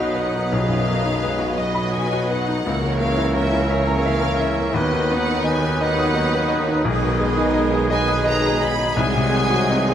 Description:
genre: classical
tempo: 57 BPM (dotted quarters)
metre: 12/8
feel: rubato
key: G# minor from 6.9 s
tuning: A4 = 438 Hz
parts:
  - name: clear baby grand piano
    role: melody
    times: 0.0-9.9 s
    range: B1 to D#6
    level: -23 LUFS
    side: left 3 dB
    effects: none
  - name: rich studio violin section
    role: melody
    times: 0.0-9.9 s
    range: Db5 to B5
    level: -27 LUFS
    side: equal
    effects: none
  - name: clear clarinet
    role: second line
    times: 0.0-9.9 s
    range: Db4 to D#4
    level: -33 LUFS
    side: left 2 dB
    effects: none
  - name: mellow flute section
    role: second line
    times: 0.0-9.9 s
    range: D#6 to Fb6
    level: -32 LUFS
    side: left 1 dB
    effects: none
  - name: rich studio violin section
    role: second line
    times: 0.0-9.9 s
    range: F#4 to D#5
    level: -32 LUFS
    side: equal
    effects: none
  - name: warm oboe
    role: second line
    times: 0.0-9.9 s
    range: G#4 to B4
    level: -31 LUFS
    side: right 2 dB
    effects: none
  - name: mellow bassoon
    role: accompaniment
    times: 0.0-9.9 s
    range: D#3 to Bb3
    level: -31 LUFS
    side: right 2 dB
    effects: none
  - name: rich studio viola section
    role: accompaniment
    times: 0.0-9.9 s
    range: D#3 to Ab4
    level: -30 LUFS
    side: equal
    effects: none
  - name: dark French horn section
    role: sustained chords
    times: 0.0-9.9 s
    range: Bb3 to F#4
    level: -30 LUFS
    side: left 2 dB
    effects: none
  - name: mellow trombone section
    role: sustained chords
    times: 0.0-9.9 s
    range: B2 to B3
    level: -29 LUFS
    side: right 3 dB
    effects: none
  - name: warm trumpet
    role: stabs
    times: 0.0-9.9 s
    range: G#4 to D#5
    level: -30 LUFS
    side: right 2 dB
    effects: none
  - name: rich studio cello section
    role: bass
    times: 0.0-9.9 s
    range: B2 to D#3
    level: -29 LUFS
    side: right 2 dB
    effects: none
  - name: rich studio double bass section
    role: bass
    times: 0.0-9.9 s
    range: B1 to D#2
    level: -28 LUFS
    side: right 2 dB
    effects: none
  - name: warm tuba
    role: bass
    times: 0.0-9.9 s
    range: B1 to D#2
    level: -29 LUFS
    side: right 3 dB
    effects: none
room: moderate scoring stage reverb, RT60 1.8 s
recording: close, detailed microphones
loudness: -17 LUFS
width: side -9 dB against mid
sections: 0.0-9.9 A section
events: none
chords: 0.0 B; 2.7 Bbdim/Db; 4.8 B/D#; 6.9 G#m/B; 9.0 G#7/B#

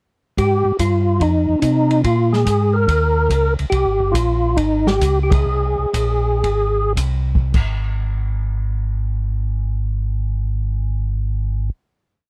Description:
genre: soul jazz organ trio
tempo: 101-144 BPM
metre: 4/4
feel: swing 67% on 8ths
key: Ab major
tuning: A4 = 435 Hz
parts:
  - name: percussive tonewheel organ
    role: melody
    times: 0.4-6.9 s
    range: D4 to Bb4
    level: -20 LUFS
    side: equal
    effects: slow rotary speaker, chorus vibrato
  - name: mellow tonewheel organ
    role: bass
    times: 0.4-11.7 s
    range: G1 to C3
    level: -21 LUFS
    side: equal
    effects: slow rotary speaker
  - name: open jazz drum kit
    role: drums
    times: 0.4-7.7 s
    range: crash cymbal, hi-hat, kick drum, ride cymbal, snare drum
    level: -24 LUFS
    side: equal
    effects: none
room: little or no reverb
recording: dry, close 1970s-style studio recording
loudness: -19 LUFS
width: mono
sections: 0.4-7.5 A section; 7.5-12.3 final note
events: slowing down 3.7-7.5; band accent 5.2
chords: 0.4 Fmadd9; 1.2 F5; 2.0 Fmadd11; 2.9 Eb5; 3.7 Abmaj7; 7.5 N.C.

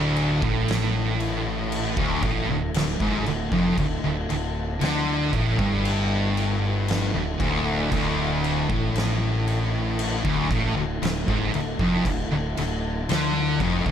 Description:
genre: stoner and doom metal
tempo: 58 BPM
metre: 4/4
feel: straight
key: D minor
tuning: A4 = 445 Hz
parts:
  - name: tonewheel organ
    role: sustained chords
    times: 0.0-13.9 s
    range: D3 to E4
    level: -36 LUFS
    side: right 3 dB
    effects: slow rotary speaker, chorus vibrato
  - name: thick fuzz guitar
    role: riff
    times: 0.0-13.9 s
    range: D2 to D3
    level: -27 LUFS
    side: left 6 dB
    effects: distortion
  - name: thick fuzz guitar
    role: riff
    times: 0.0-13.9 s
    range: D2 to D3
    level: -28 LUFS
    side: right 6 dB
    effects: distortion
  - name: thick fuzz guitar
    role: riff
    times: 0.0-13.9 s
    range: D2 to D3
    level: -30 LUFS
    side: equal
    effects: distortion
  - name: fuzz fingered electric bass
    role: bass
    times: 0.0-13.9 s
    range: D1 to D2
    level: -30 LUFS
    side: right 1 dB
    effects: overdrive
  - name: oversized low-tuned drum kit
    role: drums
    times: 0.2-13.9 s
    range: crash cymbal, kick drum, snare drum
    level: -28 LUFS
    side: equal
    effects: none
room: light reverb, small room ambience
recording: none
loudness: -21 LUFS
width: side -9 dB against mid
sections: 0.0-13.9 A section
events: none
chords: 0.0 Dm

